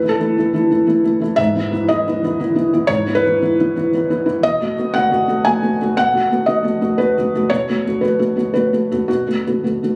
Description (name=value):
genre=neoclassical minimalist piano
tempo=117 BPM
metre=3/4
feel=rubato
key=unclear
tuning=A4 = 441 Hz
part: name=felt-muted upright piano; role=solo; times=0.0-10.0 s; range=G#2 to G#5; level=-17 LUFS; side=equal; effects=none
room=little or no reverb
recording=recorded on a phone in the room, club reverb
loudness=-17 LUFS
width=mono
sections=0.0-10.0 A section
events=none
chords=0.0 A5; 1.4 E/G#; 4.4 B7